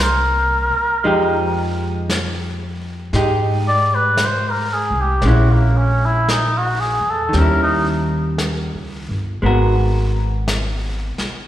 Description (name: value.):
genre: jazz ballad.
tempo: 57 BPM.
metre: 4/4.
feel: swing 68% on 8ths.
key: unclear.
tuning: A4 = 440 Hz.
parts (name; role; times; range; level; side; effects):
trumpet with cup mute; melody; 0.0-7.9 s; Bb3 to D5; -18 LUFS; equal; slapback echo.
vintage hollow-body jazz guitar; accompaniment; 0.0-11.5 s; Eb3 to Bb4; -22 LUFS; right 1 dB; slapback echo.
upright bass; bass; 0.0-11.2 s; G1 to Ab2; -19 LUFS; equal; none.
vintage brush drum kit; drums; 1.0-11.5 s; brushed snare drum, hi-hat, snare drum; -27 LUFS; equal; none.
room: moderate lush hall reverb, RT60 2.4 s.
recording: live gig heard through the venue's PA, recital hall reverb.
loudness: -15 LUFS.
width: side -12 dB against mid.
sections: 0.0-11.5 A section.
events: muted trumpet solo 0.0-11.5.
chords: 0.0 C7; 1.0 Fm9; 5.2 Bbm7b5; 7.3 Eb7b9; 9.4 Abm9.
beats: 0.00 | 1.05 2.09 3.14 4.19 | 5.24 6.28 7.33 8.38 | 9.43 10.47.